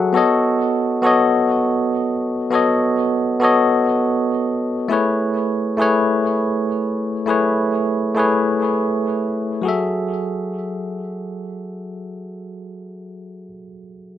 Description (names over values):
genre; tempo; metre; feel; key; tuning
chillout; 101 BPM; 4/4; straight; F# dorian; A4 = 440 Hz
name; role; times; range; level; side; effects
bell-like tine electric piano; accompaniment; 0.0-14.2 s; F#3 to F#5; -17 LUFS; moving between left 3 dB and right 4 dB; auto-pan, ping-pong delay
room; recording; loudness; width
moderate studio reverb, RT60 0.7 s; rough home demo mix; -16 LUFS; side -11 dB against mid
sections
0.0-9.7 A section; 9.7-12.0 B section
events
none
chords
0.2 B9; 4.9 Amaj9; 9.7 F#m9